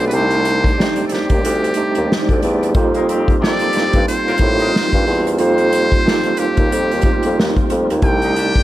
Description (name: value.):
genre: R&B, neo-soul.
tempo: 91 BPM.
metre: 4/4.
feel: swing 61% on 16ths.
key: unclear.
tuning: A4 = 441 Hz.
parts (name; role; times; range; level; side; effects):
trumpet with metal mute; melody; 0.0-8.6 s; G4 to G5; -21 LUFS; equal; none.
overdriven tine electric piano; accompaniment; 0.0-8.6 s; A3 to D5; -20 LUFS; right 4 dB; fast tremolo.
tonewheel organ; sustained chords; 0.0-8.6 s; G3 to D5; -26 LUFS; equal; fast rotary speaker, chorus vibrato.
warm bassoon; bass; 0.0-8.6 s; C2 to A2; -18 LUFS; equal; none.
unplugged drum kit; drums; 0.1-8.6 s; hi-hat, kick drum, snare drum; -18 LUFS; equal; none.
clear horn section; stabs; 2.9-8.6 s; A2 to G4; -26 LUFS; left 5 dB; none.
room: little or no reverb.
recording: none.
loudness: -13 LUFS.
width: side -15 dB against mid.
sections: 0.0-8.6 A section.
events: none.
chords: 0.0 Cm69; 2.7 F9sus4; 8.0 Cm69.